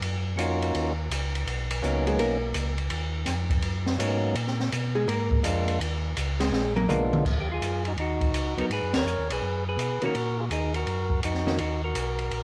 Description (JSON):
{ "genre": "soul jazz organ trio", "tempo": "166 BPM", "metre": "4/4", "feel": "swing 65% on 8ths", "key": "Eb minor", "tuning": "A4 = 440 Hz", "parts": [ { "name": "mellow tonewheel organ", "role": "bass", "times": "0.0-12.4 s", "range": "Bb1 to Cb3", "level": "-32 LUFS", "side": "equal", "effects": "slow rotary speaker" }, { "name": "open jazz drum kit", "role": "drums", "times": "0.0-12.4 s", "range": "crash cymbal, hi-hat, kick drum, ride cymbal, snare drum, toms", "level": "-32 LUFS", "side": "equal", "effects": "cassette tape" }, { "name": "percussive tonewheel organ", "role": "melody", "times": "0.4-12.4 s", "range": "F#3 to Db5", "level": "-32 LUFS", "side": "equal", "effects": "overdrive, stopped rotary speaker, cassette tape" }, { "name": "archtop guitar, miked and amplified", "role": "accompaniment", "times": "2.1-2.8, 5.0-11.6 s", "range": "Eb3 to A#4", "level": "-32 LUFS", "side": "equal", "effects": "cassette tape" } ], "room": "light reverb, small room ambience", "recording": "home recording on cassette", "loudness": "-27 LUFS", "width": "mono", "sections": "0.0-7.2 A section; 7.2-12.4 B section", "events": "hollow-body jazz guitar solo 0.0-7.2; drum fill 6.5-7.2; band accent 8.9", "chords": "0.0 Ebm7; 1.5 Bmaj7; 4.4 Bb7b9; 5.8 Dbsus2; 6.5 Bb7b9; 7.2 Ebm7; 8.7 Abm7; 10.1 Ebm" }